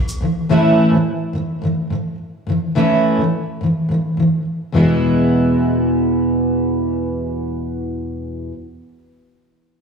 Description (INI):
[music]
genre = pop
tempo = 106 BPM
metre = 4/4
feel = swing 55% on 16ths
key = E major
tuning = A4 = 440 Hz
[part]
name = fingerpicked steel-string acoustic guitar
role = accompaniment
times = 0.2-8.5 s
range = E2 to E4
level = -16 LUFS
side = equal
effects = double-tracked left and right, slapback echo
[sound]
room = moderate plate reverb, RT60 2.8 s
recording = live gig heard through the venue's PA, club reverb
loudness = -15 LUFS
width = side -6 dB against mid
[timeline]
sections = 0.0-4.7 A section; 4.7-7.0 B section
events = none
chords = 0.2 A; 4.7 E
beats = | 0.20 0.77 1.34 1.91 | 2.47 3.04 3.61 4.17 | 4.74 5.31 5.88 6.44